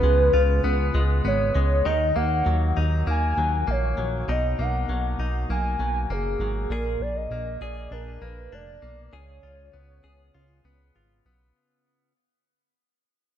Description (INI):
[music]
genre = dream pop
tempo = 99 BPM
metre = 4/4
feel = straight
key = unclear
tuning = A4 = 440 Hz
[part]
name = warbly nostalgic lead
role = melody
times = 0.0-11.0 s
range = Ab4 to Ab5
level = -26 LUFS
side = equal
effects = chorus, tape echo
[part]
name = direct-recorded clean electric guitar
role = arpeggios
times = 0.0-12.1 s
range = Bb2 to Ab4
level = -30 LUFS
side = left 3 dB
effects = lush chorus, tape echo
[part]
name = chorused synth bass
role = bass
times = 0.0-11.5 s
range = F1 to Eb2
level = -24 LUFS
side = equal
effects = none
[sound]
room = light reverb, digital ambience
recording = none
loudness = -21 LUFS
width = side -10 dB against mid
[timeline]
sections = 0.0-11.6 A section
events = fade-out 0.0-11.6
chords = 0.0 Db7; 1.9 Ebm; 4.3 Bmaj7; 6.7 Bb7; 9.1 Db7